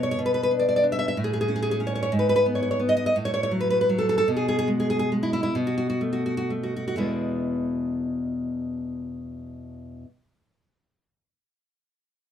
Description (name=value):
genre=romantic piece for solo classical guitar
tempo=38-63 BPM (dotted quarters)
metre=6/8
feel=rubato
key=E major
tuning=A4 = 442 Hz
part: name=nylon-string guitar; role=solo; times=0.0-10.1 s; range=E2 to E5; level=-23 LUFS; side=equal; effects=none
room=little or no reverb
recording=close, detailed microphones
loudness=-22 LUFS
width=side -9 dB against mid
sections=0.0-7.0 A section; 7.0-12.3 B section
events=slowing down 1.2-7.0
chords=0.2 Bmadd11; 1.2 A; 2.1 G#madd11; 3.1 F#m/A; 4.3 E/B; 5.5 F#madd11/B; 7.0 E